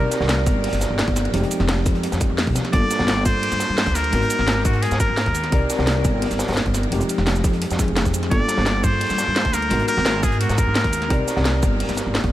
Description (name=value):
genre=liquid drum and bass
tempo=172 BPM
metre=4/4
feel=straight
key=unclear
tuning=A4 = 440 Hz
part: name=trumpet with straight mute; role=melody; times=0.0-0.1, 2.7-5.7, 8.3-11.2 s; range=Gb4 to D5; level=-25 LUFS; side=equal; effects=vintage 12-bit sampler grit, analog delay
part: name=mellow tine electric piano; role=accompaniment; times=0.0-12.3 s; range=F3 to D5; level=-25 LUFS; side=equal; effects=medium stereo tremolo, tape echo
part: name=upright bass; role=bass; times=0.0-12.3 s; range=F1 to Ab2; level=-22 LUFS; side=equal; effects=none
part: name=crunchy breakbeat drum kit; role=drums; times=0.1-12.3 s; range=hi-hat, snare drum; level=-31 LUFS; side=equal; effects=high-pass filter on hats, high-pass filter on snare, high-pass filter on room
part: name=garage drum kit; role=drums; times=0.1-12.3 s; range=hi-hat, shaker, snare drum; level=-26 LUFS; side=equal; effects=none
part: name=electronic kick drum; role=drums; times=0.5-12.3 s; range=none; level=-22 LUFS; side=equal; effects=none
room=moderate huge ambient reverb, RT60 7.9 s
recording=dreamy mix soaked in reverb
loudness=-17 LUFS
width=side -14 dB against mid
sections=0.0-12.3 A section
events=none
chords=0.0 Cm9; 1.3 Fm9; 2.7 Gm9; 4.1 Abm9; 5.5 Cm9; 6.9 Fm9; 8.3 Gm9; 9.7 Abm9; 11.1 Cm9